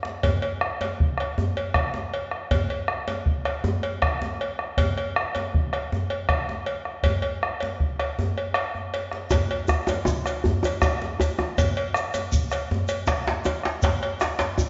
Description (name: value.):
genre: west african traditional, West African drum ensemble.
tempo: 106 BPM (dotted quarters).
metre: 12/8.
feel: straight.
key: none.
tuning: none.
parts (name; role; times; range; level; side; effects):
bombo; percussion; 0.0-14.7 s; none; -28 LUFS; equal; none.
djembe; percussion; 0.1-14.6 s; none; -32 LUFS; equal; none.
cowbell; percussion; 0.2-14.6 s; none; -32 LUFS; equal; none.
djembe; percussion; 9.3-14.7 s; none; -28 LUFS; equal; none.
shekere; percussion; 9.3-14.7 s; none; -38 LUFS; equal; none.
room: wet recital hall reverb, RT60 1.6 s.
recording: nothing above 7.8 kHz.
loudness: -25 LUFS.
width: mono.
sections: 0.0-9.3 A section; 9.3-14.7 B section.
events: drum fill 0.0, 8.7-9.3.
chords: none.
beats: | 0.23 0.80 1.37 1.94 | 2.51 3.08 3.64 4.21 | 4.78 5.35 5.91 6.48 | 7.05 7.61 8.18 8.74 | 9.31 9.88 10.44 11.01 | 11.57 12.14 12.70 13.26 | 13.83 14.39.